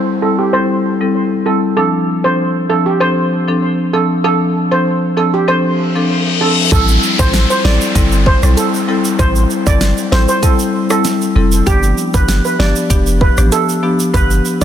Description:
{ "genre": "dancehall", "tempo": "97 BPM", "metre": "4/4", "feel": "straight", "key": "A minor", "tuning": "A4 = 440 Hz", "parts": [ { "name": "downlifter and reverse cymbal", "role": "sound effects", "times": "0.0-11.7 s", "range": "none", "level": "-21 LUFS", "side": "left 3 dB", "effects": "none" }, { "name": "steel pan", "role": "melody", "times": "0.2-14.6 s", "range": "G4 to D5", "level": "-17 LUFS", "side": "right 3 dB", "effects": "low-pass filter, digital delay" }, { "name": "marimba with medium mallets", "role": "accompaniment", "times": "0.2-14.6 s", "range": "F3 to A4", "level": "-15 LUFS", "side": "left 2 dB", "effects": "sidechain pumping, low-pass filter" }, { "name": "punchy sub bass", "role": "bass", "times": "6.7-14.6 s", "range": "F1 to B1", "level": "-14 LUFS", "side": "equal", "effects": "none" }, { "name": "pop drum kit", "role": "drums", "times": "6.7-14.6 s", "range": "hi-hat, kick drum, rim click, snare drum", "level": "-16 LUFS", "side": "equal", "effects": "none" }, { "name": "tube shaker", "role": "percussion", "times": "6.7-14.6 s", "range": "none", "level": "-25 LUFS", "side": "right 7 dB", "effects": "none" } ], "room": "light reverb, studio reverb", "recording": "dense, heavily limited modern master", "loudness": "-11 LUFS", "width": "side -10 dB against mid", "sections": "0.0-6.7 A section; 6.7-14.6 B section", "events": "filter sweep 0.0-6.7; reverse cymbal 5.8-6.7", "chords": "0.0 Am7; 1.8 Dm7; 6.7 Am7; 11.7 G7" }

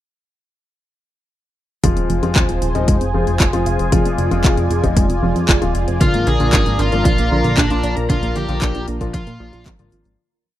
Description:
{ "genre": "italo disco", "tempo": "115 BPM", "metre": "4/4", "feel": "straight", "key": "F dorian", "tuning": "A4 = 439 Hz", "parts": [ { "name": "warm analog pad", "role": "sustained chords", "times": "1.8-10.1 s", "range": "F4 to Bb5", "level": "-24 LUFS", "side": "right 1 dB", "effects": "chorus" }, { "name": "warbly dusty pluck", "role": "arpeggios", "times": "1.8-10.1 s", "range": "D3 to F5", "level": "-24 LUFS", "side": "right 3 dB", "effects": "chorus, tape echo" }, { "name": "warm grand piano", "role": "stabs", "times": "1.8-10.2 s", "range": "F3 to F4", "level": "-23 LUFS", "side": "left 5 dB", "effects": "vintage 12-bit sampler grit, tape echo" }, { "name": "chorused synth bass", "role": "bass", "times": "1.8-10.2 s", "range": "Eb1 to Bb2", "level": "-20 LUFS", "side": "equal", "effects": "none" }, { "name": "electronic kick drum", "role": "drums", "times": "1.8-9.8 s", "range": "none", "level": "-17 LUFS", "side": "equal", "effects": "overdrive" }, { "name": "house drum kit", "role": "drums", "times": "1.8-10.2 s", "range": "handclaps, hi-hat", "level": "-22 LUFS", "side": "left 1 dB", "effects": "overdrive" }, { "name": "biting lead guitar", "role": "melody", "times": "6.0-9.6 s", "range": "D4 to Ab4", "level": "-23 LUFS", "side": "equal", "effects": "overdrive, tape echo" } ], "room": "digital ambience", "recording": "dry, close 1970s-style studio recording", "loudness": "-14 LUFS", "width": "side -13 dB against mid", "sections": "1.8-10.2 verse", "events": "fade-out 7.4-10.2", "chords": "1.8 Fm; 6.0 Bb" }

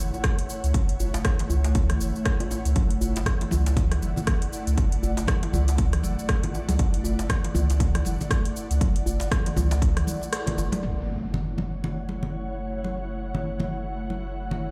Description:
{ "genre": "afro house", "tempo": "119 BPM", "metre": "4/4", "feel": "swing 58% on 16ths", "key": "F# minor", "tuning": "A4 = 440 Hz", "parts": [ { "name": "ethereal airy pad", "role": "sustained chords", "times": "0.0-14.7 s", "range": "A3 to F#5", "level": "-35 LUFS", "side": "equal", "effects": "ensemble chorus, built-in reverb, tremolo, vintage 12-bit sampler grit, sidechain pumping" }, { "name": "warm sub bass", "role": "bass", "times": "0.0-14.7 s", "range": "F#1 to C#2", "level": "-29 LUFS", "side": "equal", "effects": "sidechain pumping" }, { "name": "afro-pop drum kit", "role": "drums", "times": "0.1-10.8 s", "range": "cabasa, hi-hat, rim click, toms", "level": "-35 LUFS", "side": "equal", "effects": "low-pass filter on hats, low-pass filter on perc, low-pass filter on snare, low-pass filter on toms" }, { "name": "djembe", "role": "percussion", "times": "0.1-10.7 s", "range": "none", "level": "-34 LUFS", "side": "equal", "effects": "none" }, { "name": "electronic kick drum", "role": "drums", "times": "0.2-9.9 s", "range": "none", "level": "-26 LUFS", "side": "equal", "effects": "none" }, { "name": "congas", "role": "percussion", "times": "2.8-14.6 s", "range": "none", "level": "-34 LUFS", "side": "equal", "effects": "none" }, { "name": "impact", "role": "sound effects", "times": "10.8-12.8 s", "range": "none", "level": "-37 LUFS", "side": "equal", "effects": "none" } ], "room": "light reverb, digital ambience", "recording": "played on a big sound system in a bare room, large studio reverb", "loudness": "-25 LUFS", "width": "mono", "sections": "0.0-10.8 A section; 10.8-14.7 B section", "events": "break 10.3-10.8; band accent 10.3; impact 10.8-12.8", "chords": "0.0 F#m7; 2.8 Dadd9/F#; 10.8 F#m7" }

